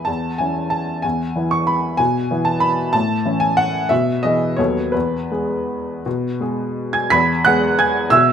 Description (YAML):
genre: classical, piano waltz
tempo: 158-201 BPM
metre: 3/4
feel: rubato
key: E major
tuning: A4 = 440 Hz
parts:
  - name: warm upright piano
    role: solo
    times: 0.0-8.3 s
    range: D#2 to B6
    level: -16 LUFS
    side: equal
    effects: none
room: moderate large studio reverb, RT60 1.1 s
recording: none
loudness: -16 LUFS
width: side -8 dB against mid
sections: 0.0-7.1 A section; 7.1-8.3 A section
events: none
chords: 0.1 A/E; 1.0 E; 2.9 A; 3.9 E/B; 4.6 B7/D#; 4.9 E